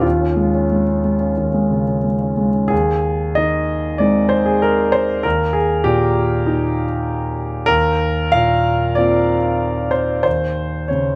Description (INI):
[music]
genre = neoclassical minimalist piano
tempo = 88-99 BPM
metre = 4/4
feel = rubato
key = unclear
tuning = A4 = 438 Hz
[part]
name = warm concert grand piano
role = solo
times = 0.0-11.2 s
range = Eb2 to F5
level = -18 LUFS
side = equal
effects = none
[sound]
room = moderate studio reverb, RT60 0.5 s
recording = none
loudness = -18 LUFS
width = mono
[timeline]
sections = 0.0-2.7 A section; 2.7-11.2 A section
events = none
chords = 0.0 Db/Eb; 2.7 Ab/Eb; 5.2 Eb; 7.7 Bbadd9/Eb; 10.3 N.C.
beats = | 0.04 0.72 1.38 2.05 | 2.71 3.38 4.01 4.63 | 5.24 5.85 6.46 7.07 | 7.68 8.33 8.96 9.60 | 10.25 10.90